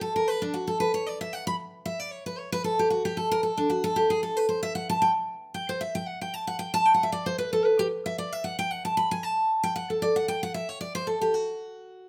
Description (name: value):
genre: bluegrass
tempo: 228 BPM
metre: 4/4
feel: swing 54% on 8ths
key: D major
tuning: A4 = 440 Hz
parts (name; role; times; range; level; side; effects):
- picked steel-string acoustic guitar; solo; 0.0-12.1 s; D4 to B5; -27 LUFS; equal; none
room: light reverb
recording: none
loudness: -27 LUFS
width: mono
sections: 0.0-4.0 A section; 4.0-12.1 A section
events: steel-string acoustic guitar solo 0.0-12.1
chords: none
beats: 0.01 0.28 0.54 | 0.80 1.07 1.33 1.59 | 1.85 2.12 2.38 2.64 | 2.91 3.17 3.43 3.70 | 3.96 4.22 4.49 4.75 | 5.01 5.28 5.54 5.80 | 6.07 6.33 6.60 6.86 | 7.12 7.39 7.65 7.91 | 8.18 8.44 8.70 8.97 | 9.23 9.49 9.76 10.02 | 10.28 10.54 10.81 11.07 | 11.33 11.60 11.86